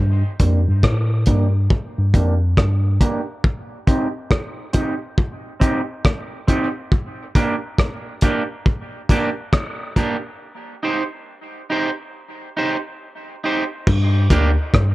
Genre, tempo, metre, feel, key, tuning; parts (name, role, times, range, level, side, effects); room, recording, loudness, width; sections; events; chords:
dub reggae; 69 BPM; 4/4; swing 62% on 16ths; G minor; A4 = 442 Hz
mellow tine electric piano; bass; 0.0-3.0, 13.9-14.9 s; D2 to A2; -16 LUFS; equal; wide subtle chorus
electric guitar at the edge of break-up; accompaniment; 0.4-14.5 s; Bb3 to C5; -24 LUFS; right 2 dB; low-pass filter, dub echo
cloth-damped thuddy drum kit; drums; 0.4-14.9 s; crash cymbal, hi-hat, kick drum, rim click; -18 LUFS; equal
small room ambience; -17 LUFS; side -18 dB against mid
0.0-13.9 A section; 13.9-14.9 B section
filter sweep on clean electric guitar 0.0-13.9; break 3.4-10.4, 10.4-13.9
0.0 Gm; 3.4 Cm; 6.9 Gm; 10.4 Cm; 13.9 Gm